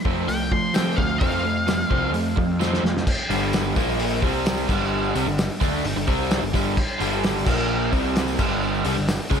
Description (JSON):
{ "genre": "classic rock", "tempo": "130 BPM", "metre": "4/4", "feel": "straight", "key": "unclear", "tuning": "A4 = 440 Hz", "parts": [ { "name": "overdriven electric guitar", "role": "riff", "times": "0.0-9.4 s", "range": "G2 to D4", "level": "-27 LUFS", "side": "left 10 dB", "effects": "none" }, { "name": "overdriven electric guitar", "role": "riff", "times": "0.0-9.4 s", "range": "G2 to D4", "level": "-26 LUFS", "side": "right 11 dB", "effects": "none" }, { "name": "fuzz picked electric bass", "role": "bass", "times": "0.1-9.4 s", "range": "G1 to F3", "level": "-27 LUFS", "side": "equal", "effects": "overdrive" }, { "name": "cloth-damped thuddy drum kit", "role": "drums", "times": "0.1-9.4 s", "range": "crash cymbal, hi-hat, kick drum, snare drum", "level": "-24 LUFS", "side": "equal", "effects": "none" }, { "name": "octave-fuzz lead guitar", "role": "melody", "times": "0.3-2.1 s", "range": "F5 to C6", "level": "-27 LUFS", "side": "left 1 dB", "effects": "distortion, slapback echo, analog delay" }, { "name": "tambourine", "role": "percussion", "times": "0.7-9.4 s", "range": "none", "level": "-42 LUFS", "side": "left 5 dB", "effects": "none" } ], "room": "moderate lush hall reverb, RT60 1.9 s", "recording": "big arena sound", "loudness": "-20 LUFS", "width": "side -7 dB against mid", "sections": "0.0-3.1 A section; 3.1-9.4 B section", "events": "lead electric guitar solo 0.0-3.1; drum fill 2.6-3.1", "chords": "0.0 F; 3.1 G5; 3.8 Bb5; 4.2 C5; 4.7 G5; 7.5 Bb5; 7.9 C5; 8.4 G5" }